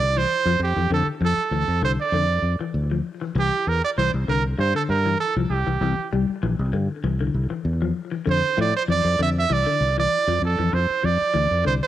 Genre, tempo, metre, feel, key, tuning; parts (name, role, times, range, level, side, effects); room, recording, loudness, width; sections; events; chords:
afrobeat; 98 BPM; 4/4; swing 54% on 16ths; A4 = 440 Hz
bright trumpet; melody; 0.0-11.9 s; G4 to E5; -22 LUFS; right 5 dB; plate reverb
semi-hollow electric guitar; arpeggios; 0.0-11.8 s; D3 to G3; -28 LUFS; left 7 dB; spring reverb, analog delay
fingered electric bass; bass; 0.0-11.8 s; Bb1 to A2; -23 LUFS; left 1 dB
light reverb; home recording on cassette; -20 LUFS; side -12 dB against mid
0.0-11.9 A section
0.0 F6; 3.4 C; 8.3 F5